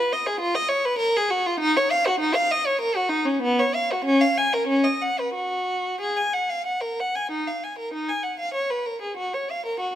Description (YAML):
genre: classical, baroque-style suite movement for unaccompanied violin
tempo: 89-101 BPM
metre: 3/4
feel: rubato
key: unclear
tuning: A4 = 437 Hz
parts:
  - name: rich violin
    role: solo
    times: 0.0-9.9 s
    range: B3 to G#5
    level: -21 LUFS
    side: equal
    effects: none
room: moderate scoring stage reverb, RT60 1.6 s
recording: close, detailed microphones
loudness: -21 LUFS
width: side -11 dB against mid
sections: 0.0-7.3 A section; 7.3-10.0 A section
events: none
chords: none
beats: 0.40 0.99 | 1.60 2.20 2.81 | 3.44 4.07 4.70 | 5.35 6.01 6.66 | 7.32 7.93 8.54 | 9.17 9.80